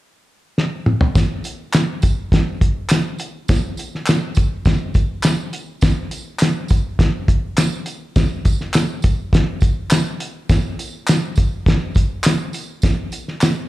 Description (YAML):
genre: soul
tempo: 103 BPM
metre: 4/4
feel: straight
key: none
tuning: none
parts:
  - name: cloth-damped thuddy drum kit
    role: drums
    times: 0.6-13.6 s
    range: hi-hat, kick drum, snare drum, toms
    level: -16 LUFS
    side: equal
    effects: none
  - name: tambourine and handclaps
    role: percussion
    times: 1.2-13.5 s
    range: none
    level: -27 LUFS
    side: equal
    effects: none
room: moderate plate reverb, RT60 1.8 s, small room ambience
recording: live gig heard through the venue's PA, club reverb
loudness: -16 LUFS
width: side -17 dB against mid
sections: 0.0-1.2 A section; 1.2-13.7 B section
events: drum fill 0.6-1.2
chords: none